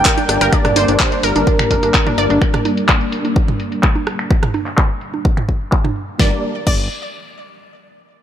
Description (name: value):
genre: progressive house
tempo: 127 BPM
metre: 4/4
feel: straight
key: G minor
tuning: A4 = 438 Hz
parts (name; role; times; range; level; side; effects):
- warm velvety synth lead; melody; 0.0-2.4 s; Bb4 to G5; -20 LUFS; right 1 dB; chorus, cassette tape, digital delay
- filtered supersaw swell; sustained chords; 0.0-6.4 s; G3 to D5; -22 LUFS; left 1 dB; sidechain pumping, low-pass filter
- fat analog bass; bass; 0.0-2.4, 6.2-6.9 s; F1 to G1; -21 LUFS; equal; sidechain pumping
- wide unison pluck; arpeggios; 0.1-2.4, 6.2-6.8 s; D4 to D5; -21 LUFS; left 1 dB; sidechain pumping, digital delay
- deep house drum kit; drums; 0.1-6.8 s; crash cymbal, finger snaps, handclaps, hi-hat, snare drum; -21 LUFS; left 1 dB; sidechain pumping on hats, low-pass filter on hats, sidechain pumping on perc, low-pass filter on perc, low-pass filter on snare, sidechain pumping on cymbals, low-pass filter on cymbals, low-pass filter on room
- electronic kick drum; drums; 0.1-6.8 s; none; -16 LUFS; equal; none
- punchy analog drum machine; percussion; 0.2-5.9 s; congas, rim click, toms; -22 LUFS; right 4 dB; sidechain pumping on perc, sidechain pumping on snare, sidechain pumping on toms
room: little or no reverb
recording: none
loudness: -13 LUFS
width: side -10 dB against mid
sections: 0.0-6.2 A section; 6.2-8.1 B section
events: filter sweep on drum 0.0-6.2; filter sweep on supersaw synth 0.0-6.2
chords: 0.0 Gm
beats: 0.05 | 0.53 1.00 1.47 1.94 | 2.42 2.89 3.36 3.83 | 4.30 4.78 5.25 5.72 | 6.20 6.67